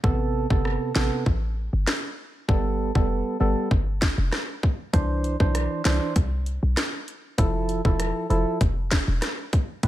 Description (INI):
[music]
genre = dancehall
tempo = 98 BPM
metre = 4/4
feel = straight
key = unclear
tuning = A4 = 441 Hz
[part]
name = percussive organ stab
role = accompaniment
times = 0.0-9.9 s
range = C3 to C5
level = -26 LUFS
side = right 2 dB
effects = chorus, sidechain pumping
[part]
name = short 808-style bass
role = bass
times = 0.0-9.9 s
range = E1 to C2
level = -25 LUFS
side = equal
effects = none
[part]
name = island pop drum kit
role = drums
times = 0.0-9.9 s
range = finger snaps, hi-hat, kick drum, rim click, snare drum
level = -24 LUFS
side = equal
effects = none
[sound]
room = little or no reverb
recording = none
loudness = -22 LUFS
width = side -14 dB against mid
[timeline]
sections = 0.0-9.9 A section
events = break 0.0-4.9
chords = 0.0 Amadd9; 2.5 Gadd9; 4.9 Cadd9; 7.4 Fmaj7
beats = | 0.04 0.65 1.26 1.88 | 2.49 3.10 3.71 4.32 | 4.94 5.55 6.16 6.77 | 7.38 8.00 8.61 9.22 | 9.83